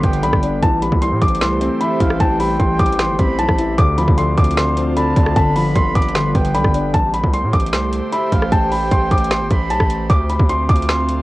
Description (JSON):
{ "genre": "hip hop, trap", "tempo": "152 BPM", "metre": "4/4", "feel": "half-time", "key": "A minor", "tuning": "A4 = 440 Hz", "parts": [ { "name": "felt-muted upright piano", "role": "melody", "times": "0.0-11.2 s", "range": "A5 to D6", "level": "-20 LUFS", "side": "left 1 dB", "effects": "cassette tape, plate reverb" }, { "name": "breathy flute-like synth lead", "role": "second line", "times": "0.0-10.1 s", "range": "E5 to B5", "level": "-26 LUFS", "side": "right 3 dB", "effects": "chorus, cassette tape, tape echo, plate reverb" }, { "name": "dark concert grand piano", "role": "accompaniment", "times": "0.0-7.0 s", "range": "D3 to E4", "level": "-21 LUFS", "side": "left 2 dB", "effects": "cassette tape, plate reverb" }, { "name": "airy breathy pad", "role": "sustained chords", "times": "0.0-11.2 s", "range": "D3 to C5", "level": "-25 LUFS", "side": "right 2 dB", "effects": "chorus, cassette tape, plate reverb" }, { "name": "distorted 808-style bass", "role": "bass", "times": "0.0-11.2 s", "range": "G1 to A2", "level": "-21 LUFS", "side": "equal", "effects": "distortion" }, { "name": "trap drum kit", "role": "drums", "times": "0.0-11.2 s", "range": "finger snaps, hi-hat, kick drum, rim click, snare drum", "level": "-17 LUFS", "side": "equal", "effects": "cassette tape" } ], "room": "light reverb", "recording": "home recording on cassette", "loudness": "-14 LUFS", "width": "side -18 dB against mid", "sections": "0.0-6.9 A section; 6.9-11.2 A section", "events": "none", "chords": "0.0 G7; 0.6 Am7; 3.8 Dm7; 5.4 G7; 6.9 Am7; 10.1 Dm7" }